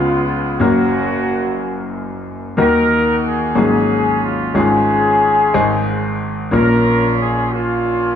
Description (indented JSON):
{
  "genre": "gospel",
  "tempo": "61 BPM (dotted quarters)",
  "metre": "6/8",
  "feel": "straight",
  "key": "Db major",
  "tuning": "A4 = 442 Hz",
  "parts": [
    { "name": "mellow horn section", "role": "melody", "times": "0.0-8.2 s", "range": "Ab3 to Bb4", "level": "-16 LUFS", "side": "equal", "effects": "none" },
    { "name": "clear grand piano", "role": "accompaniment", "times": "0.0-8.2 s", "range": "Gb1 to C5", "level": "-16 LUFS", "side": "left 2 dB", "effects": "none" }
  ],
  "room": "wet large studio reverb, RT60 1.5 s",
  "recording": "dark, warm production",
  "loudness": "-13 LUFS",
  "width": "side -8 dB against mid",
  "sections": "0.0-8.2 A section",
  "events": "none",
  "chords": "0.0 Db7; 0.6 Gb; 2.6 Ebm; 3.6 Ab9sus4; 4.6 Db/Ab; 5.5 Ab; 6.5 Bbm"
}